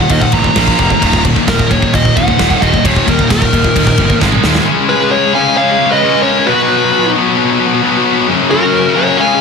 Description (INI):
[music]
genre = heavy metal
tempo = 132 BPM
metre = 4/4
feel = straight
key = Eb minor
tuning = A4 = 435 Hz
[part]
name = dark smooth lead guitar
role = melody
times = 0.0-9.4 s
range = Bb4 to Bb5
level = -15 LUFS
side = equal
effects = overdrive, tape echo
[part]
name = high-gain distorted guitar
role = riff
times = 0.0-4.7 s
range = Eb2 to Bb3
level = -17 LUFS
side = right 9 dB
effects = distortion
[part]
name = tight distorted guitar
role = riff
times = 0.0-9.4 s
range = Eb2 to Bb3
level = -16 LUFS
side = left 12 dB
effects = distortion
[part]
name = tight distorted guitar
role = riff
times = 0.0-9.4 s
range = Eb2 to Db4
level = -15 LUFS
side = equal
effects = distortion
[part]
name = fuzz picked electric bass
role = bass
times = 0.0-4.6 s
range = Eb1 to Eb2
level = -16 LUFS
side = right 1 dB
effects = overdrive
[part]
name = big rock drum kit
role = drums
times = 0.1-4.7 s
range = crash cymbal, kick drum, snare drum, toms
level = -15 LUFS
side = equal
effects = none
[part]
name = high-gain lead guitar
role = second line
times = 4.9-9.4 s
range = F#4 to F5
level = -19 LUFS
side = equal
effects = distortion
[sound]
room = little or no reverb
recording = dense, heavily limited modern master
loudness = -9 LUFS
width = side -5 dB against mid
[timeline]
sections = 0.0-4.7 A section; 4.7-9.4 B section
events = lead electric guitar solo 0.0-4.7; drum fill 4.2-4.7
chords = 0.0 Eb5; 0.6 Bb5; 1.0 Eb5; 4.2 Ab5; 4.7 Db5; 6.5 B5; 8.3 Gb